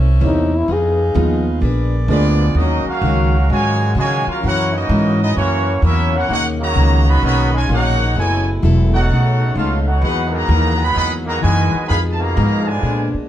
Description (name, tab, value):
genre	jazz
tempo	129 BPM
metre	4/4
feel	swing 66% on 8ths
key	Eb minor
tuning	A4 = 441 Hz
part	picked plugged-in steel-string acoustic guitar	accompaniment	0.0-13.2 s	Gb2 to Cb5	-23 LUFS	left 5 dB	none
part	mellow saxophone section	sustained chords	0.0-13.3 s	Bb2 to F5	-27 LUFS	left 1 dB	none
part	upright bass	bass	0.0-13.2 s	Fb1 to Db3	-16 LUFS	right 1 dB	none
part	warm grand piano	accompaniment	0.2-2.6 s	Ab3 to Bb4	-23 LUFS	right 5 dB	none
part	growling trombone	melody	0.3-1.5 s	Eb4 to Ab4	-18 LUFS	left 2 dB	plate reverb
part	clear trumpet section	melody	2.1-13.1 s	Bb3 to B5	-20 LUFS	right 1 dB	plate reverb
part	muted trombone section	second line	2.1-13.1 s	Bb2 to Gb4	-24 LUFS	right 2 dB	none
room	moderate club reverb, RT60 0.7 s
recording	dark, warm production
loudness	-14 LUFS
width	side -12 dB against mid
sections	0.0-2.6 A section; 2.6-13.3 B section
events	trombone solo 0.0-2.6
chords	0.0 C7b9; 0.7 Fm7b5; 1.6 Bb7b9; 2.6 Ebm11; 4.4 Gb7; 6.3 Bmaj9; 8.2 Gbm11; 9.1 B9; 10.0 Emaj9#11; 11.9 Fm7b5